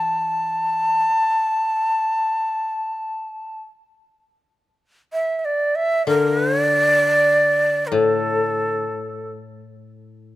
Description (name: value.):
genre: japanese traditional, Japanese chamber music.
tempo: free time.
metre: none.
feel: none.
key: unclear.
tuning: A4 = 440 Hz.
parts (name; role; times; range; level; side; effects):
bright shakuhachi; melody; 0.0-9.3 s; A4 to A5; -18 LUFS; equal; none.
koto; accompaniment; 0.0-10.4 s; A2 to E3; -23 LUFS; left 4 dB; none.
room: light reverb.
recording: close, detailed microphones.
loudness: -17 LUFS.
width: side -15 dB against mid.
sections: 0.0-4.1 A section; 4.1-10.4 B section.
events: none.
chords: none.